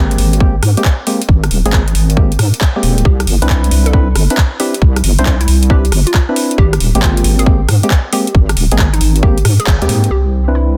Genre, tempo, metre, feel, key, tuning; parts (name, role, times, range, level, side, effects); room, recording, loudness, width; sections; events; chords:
UK garage, two-step garage; 136 BPM; 4/4; swing 67% on 16ths; A4 = 439 Hz
percussive organ stab; stabs; 0.0-10.8 s; Ab3 to C5; -21 LUFS; equal; chorus, digital delay
deep soft wobble bass; bass; 0.0-10.8 s; Eb1 to Ab2; -15 LUFS; equal; chorus, tube saturation
garage drum kit; drums; 0.1-10.1 s; handclaps, hi-hat, rim click; -21 LUFS; equal
electronic kick drum; drums; 0.4-9.8 s; -13 LUFS; equal
hollow square pluck; melody; 3.1-10.7 s; Eb4 to A4; -25 LUFS; equal; chorus, digital delay
clear studio violin section; sustained chords; 10.1-10.8 s; C4; -33 LUFS; equal; sidechain pumping, low-pass filter
little or no reverb; dense, heavily limited modern master; -12 LUFS; mono
0.0-10.1 A section
band accent 9.7
0.0 Abmaj9; 3.1 Cmaj9; 6.6 Abmaj9; 10.1 Cmaj9